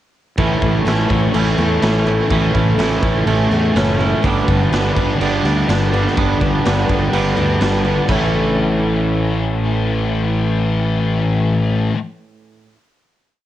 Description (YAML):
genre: rock, shoegaze and dream pop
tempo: 125 BPM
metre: 4/4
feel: straight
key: A mixolydian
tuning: A4 = 438 Hz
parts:
  - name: picked twelve-string acoustic guitar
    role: arpeggios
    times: 0.4-12.0 s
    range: E3 to A4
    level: -23 LUFS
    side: left 4 dB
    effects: analog chorus, cassette tape, analog delay
  - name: thick fuzz guitar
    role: riff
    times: 0.4-12.0 s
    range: G2 to A3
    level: -21 LUFS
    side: left 4 dB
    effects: distortion, ensemble chorus, cassette tape
  - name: twangy electric guitar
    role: riff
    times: 0.4-12.0 s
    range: G2 to E4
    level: -20 LUFS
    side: right 7 dB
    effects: reverse reverb, cassette tape
  - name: fuzz fingered electric bass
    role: bass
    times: 0.4-11.9 s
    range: F#1 to E2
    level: -19 LUFS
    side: equal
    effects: overdrive
  - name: raw garage drum kit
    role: drums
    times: 0.4-8.2 s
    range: crash cymbal, kick drum, snare drum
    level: -21 LUFS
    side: equal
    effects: cassette tape
room: light reverb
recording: home recording on cassette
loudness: -14 LUFS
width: side -12 dB against mid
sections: 0.4-8.1 A section; 8.1-11.9 final chord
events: none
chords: 0.4 A; 4.2 G; 8.1 A